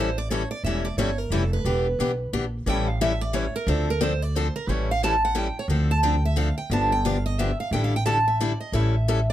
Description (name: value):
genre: acoustic string swing (jazz manouche)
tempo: 178 BPM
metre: 3/4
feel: swing 61% on 8ths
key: unclear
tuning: A4 = 440 Hz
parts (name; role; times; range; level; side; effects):
- picked steel-string acoustic guitar; melody; 0.0-9.3 s; A4 to A5; -27 LUFS; right 2 dB; none
- picked steel-string acoustic guitar; accompaniment; 0.0-9.2 s; D3 to A4; -27 LUFS; left 4 dB; none
- upright bass; bass; 0.0-9.3 s; E1 to D2; -25 LUFS; equal; none
room: light reverb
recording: close, detailed microphones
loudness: -22 LUFS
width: side -12 dB against mid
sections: 0.0-4.7 A section; 4.7-9.3 A section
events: steel-string acoustic guitar solo 0.0-9.3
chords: 0.0 A7; 1.7 Em7; 2.7 A7; 3.7 Dm7; 4.7 A7; 5.7 Dm7; 6.7 G7; 7.7 A7sus4; 8.7 A7